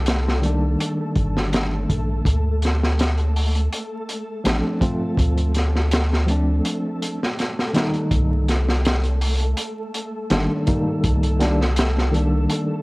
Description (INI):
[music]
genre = trip hop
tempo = 82 BPM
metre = 4/4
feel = straight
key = C dorian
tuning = A4 = 440 Hz
[part]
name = soft dub sub bass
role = bass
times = 0.0-12.5 s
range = G1 to D2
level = -20 LUFS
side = equal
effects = none
[part]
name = flickering grainy texture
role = texture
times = 0.0-12.8 s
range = A3 to A4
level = -31 LUFS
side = equal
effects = built-in reverb
[part]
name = crunchy breakbeat drum kit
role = drums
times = 0.1-12.7 s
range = hi-hat, kick drum, snare drum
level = -23 LUFS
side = equal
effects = none
[part]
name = tine electric piano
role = accompaniment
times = 0.4-12.8 s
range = Eb3 to F4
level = -24 LUFS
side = equal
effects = overdrive, tremolo, tape echo
[sound]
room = small room ambience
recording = worn, warbling old tape, cassette tape, vinyl crackle, warbly pitch drift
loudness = -18 LUFS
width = side -24 dB against mid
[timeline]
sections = 0.0-8.1 A section; 8.1-12.8 B section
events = break 6.6-8.1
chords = 0.0 Cm9; 2.3 Dm7; 8.1 Cm9